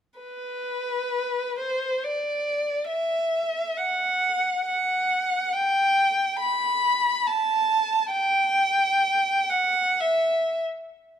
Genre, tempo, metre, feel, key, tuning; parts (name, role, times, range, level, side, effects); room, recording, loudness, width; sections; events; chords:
classical, free, expressive piece for unaccompanied violin; 68 BPM; 3/4; uneven beats, rubato; E minor; A4 = 439 Hz
rich violin; solo; 0.2-10.6 s; B4 to B5; -22 LUFS; equal
light reverb; close, detailed microphones; -22 LUFS; side -9 dB against mid
0.2-11.2 A section